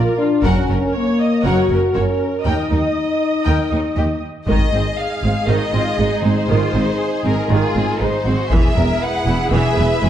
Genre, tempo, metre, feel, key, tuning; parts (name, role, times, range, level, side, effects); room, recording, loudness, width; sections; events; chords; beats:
cinematic, epic orchestral film score; 119 BPM; 4/4; straight; Ab mixolydian from 4.5 s; A4 = 440 Hz
clear symphonic violin section; second line; 0.0-10.1 s; Db4 to G5; -26 LUFS; left 2 dB
rich symphonic viola section; accompaniment; 0.0-10.1 s; Eb3 to Eb5; -22 LUFS; right 2 dB
warm French horn section; sustained chords; 0.0-10.1 s; G#3 to Gb4; -22 LUFS; left 3 dB
rich symphonic cello section; bass; 0.4-10.1 s; Eb2 to Ab2; -22 LUFS; right 2 dB
rich symphonic double bass section; bass; 0.4-10.1 s; E1 to Eb2; -21 LUFS; right 2 dB
taiko ensemble; drums; 0.4-1.4, 4.5-5.4, 8.5-9.5 s; -20 LUFS; equal
clear symphonic violin section; melody; 4.5-10.1 s; Ab4 to Gb5; -22 LUFS; left 3 dB
moderate recital hall reverb, RT60 1.4 s; dark, warm production; -15 LUFS; side -10 dB against mid
0.0-4.5 A section; 4.5-10.1 B section
0.4 Gb; 2.5 Eb; 4.5 Ab; 8.5 E
| 0.44 0.95 1.45 1.95 | 2.46 2.96 3.47 3.97 | 4.47 4.98 5.48 5.99 | 6.49 7.00 7.50 8.01 | 8.51 9.01 9.52 10.02